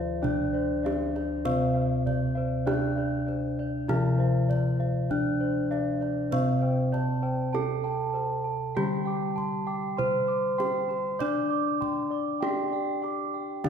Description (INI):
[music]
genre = Javanese gamelan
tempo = 49 BPM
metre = 4/4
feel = straight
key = D slendro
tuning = A4 = 440 Hz
[part]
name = gamelan-type bronze metallophone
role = melody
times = 0.0-13.7 s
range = C4-25c to D5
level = -30 LUFS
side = left 1 dB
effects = none
[part]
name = gamelan-type bronze metallophone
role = accompaniment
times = 0.0-13.7 s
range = C3-25c to D4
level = -31 LUFS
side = equal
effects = none
[part]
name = gamelan-type bossed gongs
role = arpeggios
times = 0.0-13.4 s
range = C5-25c to D6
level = -35 LUFS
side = left 4 dB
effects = none
[part]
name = gamelan-type bronze metallophone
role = arpeggios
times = 0.0-13.7 s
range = C5-25c to D6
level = -34 LUFS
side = right 4 dB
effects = none
[part]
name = gamelan-type bossed gongs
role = bass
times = 0.0-13.7 s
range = D2 to D5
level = -32 LUFS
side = left 1 dB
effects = none
[part]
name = kendang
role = percussion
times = 0.2-13.7 s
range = none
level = -37 LUFS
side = right 4 dB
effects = none
[sound]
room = wet concert hall reverb, RT60 2.2 s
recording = minimal, uncompressed stereo recording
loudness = -25 LUFS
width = side -7 dB against mid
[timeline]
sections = 0.0-13.7 A section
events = none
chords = none